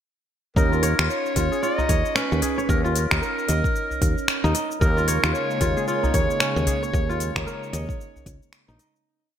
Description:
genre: organic downtempo.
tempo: 113 BPM.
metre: 4/4.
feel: swing 59% on 16ths.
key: unclear.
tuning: A4 = 440 Hz.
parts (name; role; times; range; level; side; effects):
breathy clarinet; melody; 0.6-8.5 s; Bb4 to Eb5; -27 LUFS; equal; ping-pong delay.
kora; arpeggios; 0.6-9.4 s; Db4 to Eb5; -28 LUFS; left 1 dB; low-pass filter, ping-pong delay.
woody fretless electric bass; bass; 0.6-8.8 s; Bb1 to Eb2; -24 LUFS; equal; tube saturation.
electronic kick drum; drums; 0.6-8.4 s; none; -24 LUFS; equal; none.
organic electronic drum kit; drums; 0.6-9.0 s; cabasa, finger snaps, hi-hat; -26 LUFS; left 1 dB; gated reverb.
bronze singing bowl; texture; 0.6-9.1 s; Db4 to Db5; -32 LUFS; right 6 dB; none.
udu; percussion; 1.8-8.4 s; none; -29 LUFS; left 1 dB; none.
warm analog pad; sustained chords; 4.8-9.0 s; Db3 to Bb3; -30 LUFS; right 1 dB; chorus, sidechain pumping.
room: light reverb.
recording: bright 1980s-style digital production.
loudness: -20 LUFS.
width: side -9 dB against mid.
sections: 0.6-9.1 groove.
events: fade-out 6.2-9.1.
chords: 0.6 Ebsus2; 4.8 Bbm7/Eb.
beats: | 0.56 1.10 1.63 2.16 | 2.69 3.22 3.75 4.28 | 4.81 5.34 5.88 6.41 | 6.94 7.47 8.00 8.53.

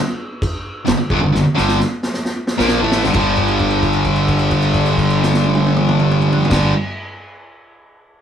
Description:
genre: garage rock duo or trio.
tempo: 132 BPM.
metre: 4/4.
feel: straight.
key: G minor.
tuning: A4 = 441 Hz.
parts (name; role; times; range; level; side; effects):
vintage drum kit; drums; 0.4-6.6 s; crash cymbal, kick drum, snare drum, toms; -20 LUFS; equal; none.
fuzz guitar; riff; 0.8-6.7 s; G2 to Bb3; -15 LUFS; equal; distortion.
fuzz fingered electric bass; bass; 0.9-6.7 s; G1 to Bb1; -23 LUFS; equal; overdrive.
room: wet studio reverb, RT60 0.5 s.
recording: band playing live in one room.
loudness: -14 LUFS.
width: side -9 dB against mid.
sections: 0.0-3.2 A section; 3.2-6.8 B section.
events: drum fill 1.3-3.2; held note 3.2-6.5.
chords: 0.0 Gm; 3.2 G5.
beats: 0.43 0.88 | 1.34 1.79 2.25 2.70 | 3.16 3.61 4.07 4.52 | 4.97 5.43 5.88 6.34.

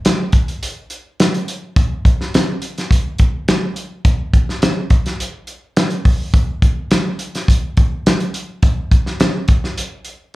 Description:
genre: soul.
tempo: 105 BPM.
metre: 4/4.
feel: straight.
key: none.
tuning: none.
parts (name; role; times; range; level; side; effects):
warm soul drum kit; drums; 0.0-10.2 s; hi-hat, kick drum, snare drum; -14 LUFS; equal; none.
room: moderate club reverb, RT60 0.6 s.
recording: live gig heard through the venue's PA, club reverb.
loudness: -14 LUFS.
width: side -19 dB against mid.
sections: 0.0-10.3 A section.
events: none.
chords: none.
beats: 0.05 0.62 1.19 | 1.76 2.33 2.90 3.48 | 4.05 4.62 5.19 5.76 | 6.34 6.91 7.48 8.06 | 8.63 9.20 9.78.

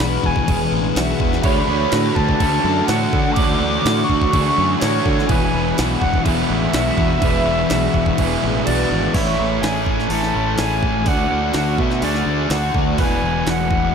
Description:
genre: rock, shoegaze and dream pop.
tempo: 125 BPM.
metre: 4/4.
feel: straight.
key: E mixolydian.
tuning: A4 = 441 Hz.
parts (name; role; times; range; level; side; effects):
mellow silver concert flute; melody; 0.0-13.9 s; C#5 to D6; -23 LUFS; left 1 dB; ping-pong delay.
deep dark ambient pad; sustained chords; 0.0-13.9 s; D3 to G#5; -28 LUFS; right 1 dB; chorus, built-in reverb.
electric guitar through a small old amp; arpeggios; 0.0-13.9 s; F#4 to D5; -26 LUFS; right 2 dB; analog chorus, ping-pong delay.
thick fuzz guitar; riff; 0.0-13.9 s; E2 to D4; -22 LUFS; left 9 dB; distortion, ensemble chorus.
growling fingered electric bass; bass; 0.0-13.9 s; E1 to D3; -23 LUFS; right 1 dB; overdrive.
jungle sampler-style drum kit; drums; 0.0-13.8 s; crash cymbal, hi-hat, kick drum, snare drum; -23 LUFS; right 1 dB; none.
crunchy overdriven guitar; riff; 1.4-13.9 s; E2 to F#4; -24 LUFS; right 12 dB; reverse reverb.
room: moderate plate reverb, RT60 2.2 s.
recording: dreamy mix soaked in reverb.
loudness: -15 LUFS.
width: side -6 dB against mid.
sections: 0.0-9.1 A section; 9.1-13.9 B section.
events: kick and snare drop out 8.7-9.1.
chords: 0.0 E7; 1.4 Dmaj9; 5.3 E7; 9.1 Amaj7; 11.1 D; 13.0 E7.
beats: 0.00 0.48 0.96 | 1.45 1.93 2.41 2.89 | 3.37 3.85 4.33 4.82 | 5.30 5.78 6.26 6.74 | 7.22 7.70 8.18 8.66 | 9.14 9.62 10.11 10.59 | 11.07 11.55 12.03 12.51 | 12.99 13.47.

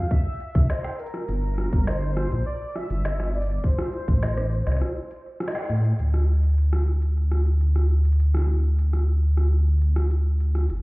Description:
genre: IDM.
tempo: 102 BPM.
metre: 4/4.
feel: straight.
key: unclear.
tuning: A4 = 440 Hz.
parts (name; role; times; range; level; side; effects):
warm velvety synth lead; melody; 0.0-5.4 s; Bb4 to E5; -34 LUFS; equal; chorus, digital delay.
dark detuned saw bass; bass; 0.0-10.8 s; G1 to A2; -20 LUFS; equal; none.
electronic kick drum; drums; 0.1-4.2 s; none; -21 LUFS; equal; overdrive.
organic electronic drum kit; drums; 0.4-10.8 s; hi-hat, rim click, snare drum; -32 LUFS; equal; overdrive.
room: digital ambience.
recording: heard muffled through a wall, club reverb, EQ.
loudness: -21 LUFS.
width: side -24 dB against mid.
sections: 0.0-6.0 A section; 6.0-10.8 B section.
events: break 4.8-6.0; band accent 5.5.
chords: 0.0 Dm9 (rootless); 1.3 Gm; 3.6 Am; 6.0 N.C..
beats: 0.11 0.70 | 1.29 1.87 2.46 3.05 | 3.64 4.23 4.82 5.40 | 5.99 6.58 7.17 7.76 | 8.35 8.93 9.52 10.11 | 10.70.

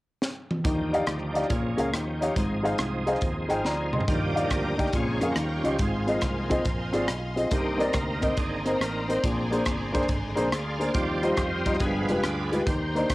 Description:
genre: uptempo gospel.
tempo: 140 BPM.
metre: 4/4.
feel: swing 66% on 8ths.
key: Eb major.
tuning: A4 = 440 Hz.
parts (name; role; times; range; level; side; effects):
crisp fusion drum kit; drums; 0.2-13.1 s; hi-hat, kick drum, rim click, snare drum, toms; -30 LUFS; equal; none.
warm grand piano; accompaniment; 0.6-13.1 s; G2 to C6; -27 LUFS; left 1 dB; none.
bright tonewheel organ; sustained chords; 0.6-13.1 s; Db3 to F5; -31 LUFS; right 1 dB; slow rotary speaker, overdrive, chorus vibrato.
fingered electric bass; bass; 0.6-13.1 s; F1 to F2; -34 LUFS; equal; none.
bright studio string section; sustained chords; 4.1-13.1 s; D5 to Eb6; -37 LUFS; left 2 dB; none.
room: light reverb.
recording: home recording on cassette.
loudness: -24 LUFS.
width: side -19 dB against mid.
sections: 0.6-4.1 A section; 4.1-13.1 B section.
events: drum fill 0.2-0.6, 3.6-4.1; tonewheel organ solo 4.1-13.1.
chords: 0.0 N.C.; 0.6 Ebmaj9; 1.5 Bbm7; 1.9 Eb9; 2.4 Ab6; 4.1 Ebmaj9; 4.9 Bbm7; 5.4 Eb9; 5.8 Ab6; 7.5 Cm9; 9.2 Bb9; 10.9 Eb69; 11.8 G7b9.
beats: 0.21 | 0.64 1.07 1.50 1.93 | 2.36 2.79 3.22 3.65 | 4.08 4.51 4.94 5.37 | 5.79 6.22 6.65 7.08 | 7.51 7.94 8.37 8.80 | 9.23 9.66 10.09 10.52 | 10.95 11.38 11.81 12.24 | 12.66 13.09.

